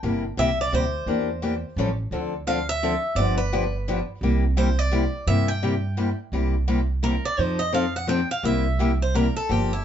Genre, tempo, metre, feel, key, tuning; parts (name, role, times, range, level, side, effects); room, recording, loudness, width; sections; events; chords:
acoustic string swing (jazz manouche); 171 BPM; 3/4; swing 62% on 8ths; C mixolydian; A4 = 440 Hz
picked swing-style acoustic guitar; melody; 0.0-9.8 s; E4 to G5; -27 LUFS; right 1 dB
picked old ladder-braced acoustic guitar; accompaniment; 0.0-9.7 s; C3 to A4; -25 LUFS; left 3 dB
upright bass; bass; 0.0-9.8 s; G1 to G2; -25 LUFS; right 2 dB
moderate studio ambience, RT60 0.5 s; band playing live in one room, nothing above 7.7 kHz; -21 LUFS; side -9 dB against mid
0.0-6.3 A section; 6.3-9.8 B section
steel-string acoustic guitar solo 6.3-9.8
0.0 C7; 1.1 Em7b5; 1.8 A7alt; 2.1 Dm7; 3.2 G7; 4.2 C7; 7.4 F7; 8.4 C7